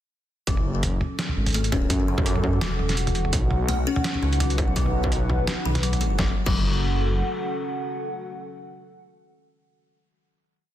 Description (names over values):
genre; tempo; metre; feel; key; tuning
half-time drum and bass; 168 BPM; 4/4; swing 56% on 16ths, half-time; F# dorian; A4 = 440 Hz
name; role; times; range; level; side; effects
dark analog pad; sustained chords; 0.5-9.8 s; C#4 to F#5; -30 LUFS; equal; chorus, vintage 12-bit sampler grit, sidechain pumping
kalimba; arpeggios; 0.5-6.6 s; C#3 to C#4; -31 LUFS; left 5 dB; ping-pong delay
dark detuned saw bass; bass; 0.5-7.2 s; E1 to F#2; -24 LUFS; equal; none
boom bap sampler-style drum kit; drums; 0.5-6.6 s; crash cymbal, hi-hat, snare drum, toms; -28 LUFS; right 1 dB; none
electronic kick drum; drums; 0.5-6.6 s; none; -25 LUFS; equal; distortion
room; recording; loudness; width
light reverb; dense, heavily limited modern master; -21 LUFS; side -12 dB against mid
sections
0.5-6.2 drop; 6.2-9.0 final chord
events
drop 0.5-6.2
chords
0.5 F#m; 3.3 B; 6.2 F#m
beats
| 0.47 0.83 1.19 1.54 | 1.90 2.26 2.62 2.97 | 3.33 3.69 4.04 4.40 | 4.76 5.12 5.47 5.83 | 6.19 6.54 6.90 7.26 | 7.62 7.97 8.33 8.69